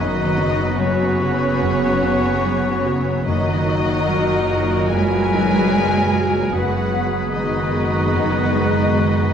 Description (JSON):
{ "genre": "cinematic, emotional film score for orchestra", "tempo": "74 BPM", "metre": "4/4", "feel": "rubato", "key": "unclear", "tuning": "A4 = 439 Hz", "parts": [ { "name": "muted studio violin section", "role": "melody", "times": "0.0-9.3 s", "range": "C#5 to G#5", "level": "-25 LUFS", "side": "left 5 dB", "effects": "none" }, { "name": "bright oboe", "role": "second line", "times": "0.0-9.3 s", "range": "A#4 to B4", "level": "-30 LUFS", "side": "right 2 dB", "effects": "none" }, { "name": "muted studio violin section", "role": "second line", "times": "0.0-9.3 s", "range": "C#4 to G#4", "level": "-26 LUFS", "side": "right 1 dB", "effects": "none" }, { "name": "small flute group", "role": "second line", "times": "0.0-9.3 s", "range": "F#4 to B4", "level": "-27 LUFS", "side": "left 1 dB", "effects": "none" }, { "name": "warm clarinet", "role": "second line", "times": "0.0-9.3 s", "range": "F#4 to G#4", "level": "-28 LUFS", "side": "right 1 dB", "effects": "none" }, { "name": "dark baby grand piano", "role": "accompaniment", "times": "0.0-9.3 s", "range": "F#2 to F#4", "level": "-26 LUFS", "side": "left 2 dB", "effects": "none" }, { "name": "muted studio viola section", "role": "accompaniment", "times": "0.0-9.3 s", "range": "F#3 to B3", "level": "-27 LUFS", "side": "right 3 dB", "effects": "none" }, { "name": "mellow French horn section", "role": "sustained chords", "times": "0.0-9.3 s", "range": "A#2 to B3", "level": "-26 LUFS", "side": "left 1 dB", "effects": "none" }, { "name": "concert harp", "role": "arpeggios", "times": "0.0-9.3 s", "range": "F#2 to A#5", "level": "-27 LUFS", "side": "left 7 dB", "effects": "none" }, { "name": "muted studio cello section", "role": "bass", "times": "0.0-9.3 s", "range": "C#3 to G#3", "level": "-25 LUFS", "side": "right 3 dB", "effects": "none" }, { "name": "muted studio double bass section", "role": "bass", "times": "0.0-9.3 s", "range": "F#1", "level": "-25 LUFS", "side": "right 3 dB", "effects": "none" } ], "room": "moderate scoring stage reverb, RT60 2.0 s", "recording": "dark, warm production", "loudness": "-16 LUFS", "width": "side -8 dB against mid", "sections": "0.0-9.3 A section", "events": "none", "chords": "0.0 F#sus4; 3.2 D#m/F#; 6.5 B6/F#", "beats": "0.80 1.62 2.44 | 3.25 4.06 4.91 5.73 | 6.53 7.33 8.14 8.94" }